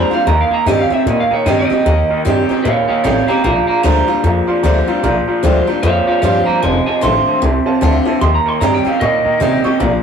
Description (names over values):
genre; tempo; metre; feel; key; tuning
rock; 151 BPM; 4/4; swing 60% on 8ths; unclear; A4 = 440 Hz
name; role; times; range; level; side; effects
electric guitar through a small old amp; melody; 0.0-9.8 s; Db5 to C6; -16 LUFS; right 4 dB; none
picked steel-string acoustic guitar; accompaniment; 0.0-10.0 s; F2 to G4; -20 LUFS; left 3 dB; none
electric guitar through a small old amp; riff; 0.0-10.0 s; F2 to C4; -18 LUFS; right 2 dB; none
upright bass; bass; 0.0-10.0 s; F1 to C3; -17 LUFS; left 1 dB; none
dark upright piano; accompaniment; 0.1-9.9 s; C5 to Db6; -23 LUFS; right 1 dB; none
room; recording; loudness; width
moderate studio reverb, RT60 0.6 s; rough rehearsal-room recording, warm saturation; -12 LUFS; side -7 dB against mid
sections
0.0-10.0 A section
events
none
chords
0.3 Eb7; 3.4 Bb7; 6.6 F7; 8.2 Eb7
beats
| 0.27 0.67 1.06 1.46 | 1.85 2.25 2.65 3.05 | 3.44 3.84 4.24 4.64 | 5.03 5.43 5.83 6.23 | 6.62 7.02 7.42 7.82 | 8.21 8.61 9.01 9.41 | 9.81